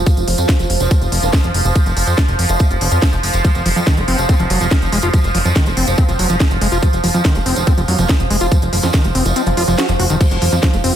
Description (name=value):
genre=psychedelic trance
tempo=142 BPM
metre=4/4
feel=straight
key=unclear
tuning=A4 = 440 Hz
part: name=bubbling stepped-filter texture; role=sustained chords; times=0.0-11.0 s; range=F3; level=-20 LUFS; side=right 2 dB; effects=chorus, built-in reverb, sidechain pumping
part: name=plucky analog bass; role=bass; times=0.0-10.9 s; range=F1 to F2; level=-18 LUFS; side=equal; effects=tube saturation
part: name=electronic kick drum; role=drums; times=0.1-10.7 s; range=none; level=-14 LUFS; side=equal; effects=overdrive, studio reverb
part: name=techno drum kit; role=drums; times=0.1-10.9 s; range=crash cymbal, hi-hat, snare drum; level=-21 LUFS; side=equal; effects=overdrive, studio reverb
part: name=tambourine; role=percussion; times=0.1-10.8 s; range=none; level=-29 LUFS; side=right 3 dB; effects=none
part: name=vowel-sweep wobble bass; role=second line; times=0.8-9.7 s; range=Bb3 to Eb4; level=-31 LUFS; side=left 3 dB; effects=none
part: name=overdriven acid bass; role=riff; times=3.4-10.9 s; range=Eb3 to Gb4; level=-20 LUFS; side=left 1 dB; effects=auto-pan, sidechain pumping, ping-pong delay
room=light reverb, digital ambience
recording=dense, heavily limited modern master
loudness=-12 LUFS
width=side -10 dB against mid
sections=0.0-11.0 A section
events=kick drops out 9.4-10.2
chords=0.0 F5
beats=| 0.07 0.49 0.91 1.33 | 1.75 2.18 2.60 3.02 | 3.44 3.87 4.29 4.71 | 5.14 5.56 5.98 6.40 | 6.83 7.25 7.67 8.09 | 8.52 8.94 9.36 9.78 | 10.21 10.63